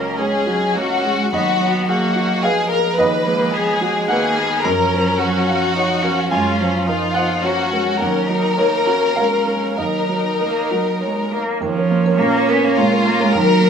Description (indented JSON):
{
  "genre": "neoclassical piano and strings",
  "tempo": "95-110 BPM",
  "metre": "3/4",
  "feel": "rubato",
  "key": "Eb minor",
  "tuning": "A4 = 439 Hz",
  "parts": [
    { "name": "rich chamber violin section", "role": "melody", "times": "0.0-13.7 s", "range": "Db4 to B4", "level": "-18 LUFS", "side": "left 3 dB", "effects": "none" },
    { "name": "rich cello", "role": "second line", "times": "0.0-13.7 s", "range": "D#3 to Cb4", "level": "-21 LUFS", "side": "right 3 dB", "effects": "none" },
    { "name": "clear upright piano", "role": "accompaniment", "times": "0.0-13.7 s", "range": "Db2 to Bb5", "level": "-22 LUFS", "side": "right 3 dB", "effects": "none" },
    { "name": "rich viola", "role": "accompaniment", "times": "0.0-13.7 s", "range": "G#3 to Db5", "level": "-26 LUFS", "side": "right 1 dB", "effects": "none" },
    { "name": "marimba with medium mallets", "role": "arpeggios", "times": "11.6-13.6 s", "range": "Eb4 to Bb5", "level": "-25 LUFS", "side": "equal", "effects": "none" }
  ],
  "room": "moderate large studio reverb, RT60 0.8 s",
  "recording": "band playing live in one room",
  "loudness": "-15 LUFS",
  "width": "side -7 dB against mid",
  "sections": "0.0-11.6 A section; 11.6-13.7 B section",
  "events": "none",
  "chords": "0.0 Dbsus4; 1.3 B6/D#; 4.6 Gbmaj7; 8.0 Ebm7; 11.6 Bbm/Eb"
}